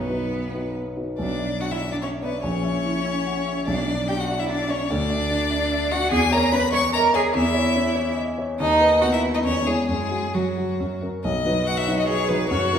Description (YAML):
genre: quick classical-period movement for piano trio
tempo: 145 BPM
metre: 3/4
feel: rubato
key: B minor, B major from 6.1 s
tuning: A4 = 441 Hz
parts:
  - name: rich violin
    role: melody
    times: 0.0-12.8 s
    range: F#4 to C#6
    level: -25 LUFS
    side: left 4 dB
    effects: none
  - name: warm cello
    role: second line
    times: 0.0-12.8 s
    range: F#3 to C#5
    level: -25 LUFS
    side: right 4 dB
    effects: none
  - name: warm grand piano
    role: accompaniment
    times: 0.0-12.8 s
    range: A#1 to F#5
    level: -24 LUFS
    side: equal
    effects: none
room: wet recital hall reverb, RT60 1.4 s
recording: recorded in a church or concert hall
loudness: -20 LUFS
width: side -8 dB against mid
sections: 0.0-1.2 A section; 1.2-11.2 B section; 11.2-12.8 C section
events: none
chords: 0.0 B; 1.2 Bm; 2.4 F#7/A#; 3.7 Bm; 4.9 Dadd9; 6.1 C#madd9/E; 8.6 B/D#; 9.4 C#m/E; 9.9 N.C.; 10.8 F#; 11.2 B